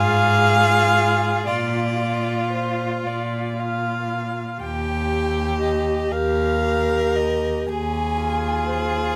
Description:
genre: classical, slow romantic movement for string quartet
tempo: 39 BPM (dotted quarters)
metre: 6/8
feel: rubato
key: Eb major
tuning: A4 = 440 Hz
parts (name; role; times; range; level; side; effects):
- dark violin; melody; 0.0-9.2 s; C5 to Ab5; -26 LUFS; equal; none
- clear violin; second line; 0.0-9.2 s; F4 to Bb4; -27 LUFS; equal; none
- rich viola; accompaniment; 0.0-9.2 s; F4 to G4; -29 LUFS; equal; none
- rich cello; bass; 0.0-9.0 s; Eb2 to Bb2; -27 LUFS; equal; none
room: light reverb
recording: none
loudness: -21 LUFS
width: mono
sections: 0.0-9.2 A section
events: none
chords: 0.0 Fm/Ab; 1.5 Bb; 4.6 Eb; 7.7 Ebsus24

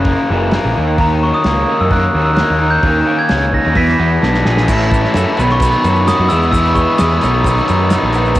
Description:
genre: indie rock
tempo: 130 BPM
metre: 4/4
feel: straight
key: B major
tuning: A4 = 439 Hz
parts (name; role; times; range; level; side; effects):
- glockenspiel with rubber mallets; melody; 0.0-7.9 s; A#5 to B6; -16 LUFS; equal; cassette tape, tape echo
- electric guitar through a small old amp; riff; 0.0-8.4 s; E2 to D#4; -23 LUFS; right 5 dB; ensemble chorus, cassette tape
- raw garage guitar; riff; 0.0-8.4 s; F#2 to A4; -17 LUFS; left 3 dB; overdrive, cassette tape
- fuzz picked electric bass; bass; 0.0-8.4 s; F#1 to F#2; -16 LUFS; equal; overdrive
- cloth-damped thuddy drum kit; drums; 0.0-8.4 s; crash cymbal, hi-hat, kick drum, snare drum; -19 LUFS; equal; cassette tape
- tube shaker; percussion; 4.7-8.4 s; none; -37 LUFS; right 7 dB; none
room: small room ambience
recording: home recording on cassette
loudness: -11 LUFS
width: side -15 dB against mid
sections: 0.0-4.7 A section; 4.7-8.4 B section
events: drum fill 4.2-4.7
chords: 0.0 F#7; 0.8 D#m; 2.8 D#5; 3.8 E7; 4.7 A6; 5.4 Bmaj7; 6.3 E; 7.2 Bmaj7

